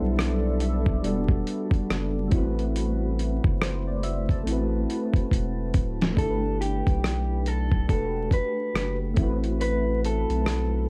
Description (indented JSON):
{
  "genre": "lo-fi hip hop",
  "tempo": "70 BPM",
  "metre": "4/4",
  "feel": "swing 61% on 16ths",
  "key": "A dorian",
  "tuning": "A4 = 440 Hz",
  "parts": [
    { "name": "soft electric-piano-like synth keys", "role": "accompaniment", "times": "0.0-10.9 s", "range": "G3 to A5", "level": "-31 LUFS", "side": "equal", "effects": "chorus, phaser, cassette tape, plate reverb" },
    { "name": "deep dark ambient pad", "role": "sustained chords", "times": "0.0-2.7 s", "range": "A4 to B5", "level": "-43 LUFS", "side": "equal", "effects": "chorus, built-in reverb, plate reverb" },
    { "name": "saturated sub bass", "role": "bass", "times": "0.0-10.9 s", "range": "D1 to B1", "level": "-30 LUFS", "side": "equal", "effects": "none" },
    { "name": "dusty soul sampler-style drum kit", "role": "drums", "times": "0.2-10.7 s", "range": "hi-hat, kick drum, rim click, snare drum", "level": "-27 LUFS", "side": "equal", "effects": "overdrive" },
    { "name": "electric guitar through a small old amp", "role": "melody", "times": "6.2-10.9 s", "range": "G4 to B4", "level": "-32 LUFS", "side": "equal", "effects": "plate reverb" }
  ],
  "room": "light reverb",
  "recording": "vinyl crackle",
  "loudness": "-25 LUFS",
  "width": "mono",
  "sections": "0.0-6.2 A section; 6.2-10.9 B section",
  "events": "drum fill 5.3-6.2",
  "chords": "0.0 G69; 1.0 Em11; 2.3 Am69; 6.2 G69; 7.9 Em11; 9.2 Am69",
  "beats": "0.17 1.03 1.89 | 2.75 3.60 4.46 5.32 | 6.17 7.03 7.89 8.75 | 9.60 10.46"
}